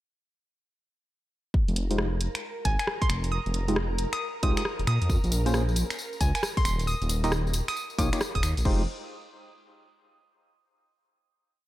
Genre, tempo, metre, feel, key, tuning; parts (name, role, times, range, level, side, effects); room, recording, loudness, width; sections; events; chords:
UK garage, two-step garage; 135 BPM; 4/4; swing 64% on 16ths; F minor; A4 = 441 Hz
soft string machine; sustained chords; 1.8-8.7 s; Bb4 to Bb5; -40 LUFS; equal; ensemble chorus, sidechain pumping
electronic kick drum; drums; 1.5-8.8 s; -26 LUFS; equal
dark detuned saw bass; bass; 1.7-8.9 s; Eb1 to Bb2; -27 LUFS; equal; tube saturation
punchy analog drum machine; drums; 1.7-8.8 s; crash cymbal, finger snaps, hi-hat, rim click; -33 LUFS; equal
percussive organ stab; stabs; 1.9-8.8 s; Ab3 to Eb5; -32 LUFS; equal; chorus, dub echo
hollow square pluck; melody; 2.7-8.7 s; Ab5 to Eb6; -34 LUFS; right 1 dB; chorus, cassette tape, dub echo
tambourine; percussion; 5.1-8.6 s; -37 LUFS; left 3 dB
little or no reverb; -24 LUFS; side -15 dB against mid
1.5-8.7 groove; 8.7-10.4 final chord
filter sweep on synth stab 1.5-8.7
1.5 Fm9; 4.9 Bbm9; 6.9 Eb9; 8.7 Fm9